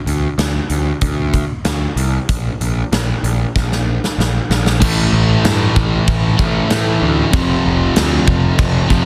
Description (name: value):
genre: quiet-loud alternative rock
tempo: 95 BPM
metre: 4/4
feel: straight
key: A phrygian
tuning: A4 = 441 Hz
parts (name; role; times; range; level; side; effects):
- fuzz picked electric bass; bass; 0.1-9.1 s; F1 to A2; -20 LUFS; equal; overdrive
- big rock drum kit; drums; 0.1-9.0 s; crash cymbal, hi-hat, kick drum, snare drum; -20 LUFS; equal; none
- fuzz guitar; riff; 4.8-9.1 s; F2 to A3; -18 LUFS; equal; distortion
room: studio reverb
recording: dense, heavily limited modern master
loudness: -16 LUFS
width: mono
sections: 0.0-4.8 A section; 4.8-9.1 B section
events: drum fill 3.6-4.8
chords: 0.0 N.C.; 4.8 A5; 7.3 F5